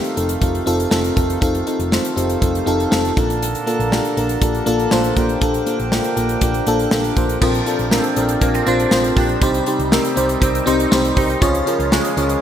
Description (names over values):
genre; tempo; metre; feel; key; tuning
1980s-style pop; 120 BPM; 4/4; straight; unclear; A4 = 440 Hz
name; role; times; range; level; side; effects
FM electric piano with soft pad layer; accompaniment; 0.0-12.4 s; Bb2 to Db5; -18 LUFS; left 1 dB; chorus
hand-pumped harmonium; sustained chords; 0.0-12.4 s; C3 to A4; -25 LUFS; right 2 dB; none
modern studio drum kit; drums; 0.0-12.4 s; crash cymbal, hi-hat, kick drum, snare drum; -20 LUFS; equal; gated reverb
hollow-body short-scale picked electric bass; bass; 0.2-12.3 s; F1 to Db2; -24 LUFS; right 1 dB; none
direct-recorded clean electric guitar; riff; 7.4-12.4 s; F3 to Eb4; -24 LUFS; right 4 dB; ensemble chorus, digital delay
room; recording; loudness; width
moderate lush hall reverb, RT60 1.9 s, small room ambience; bright 1980s-style digital production; -15 LUFS; side -10 dB against mid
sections
0.0-7.4 A section; 7.4-12.4 B section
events
none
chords
0.0 F7; 3.2 Bbmaj7; 9.4 Cm; 11.4 Db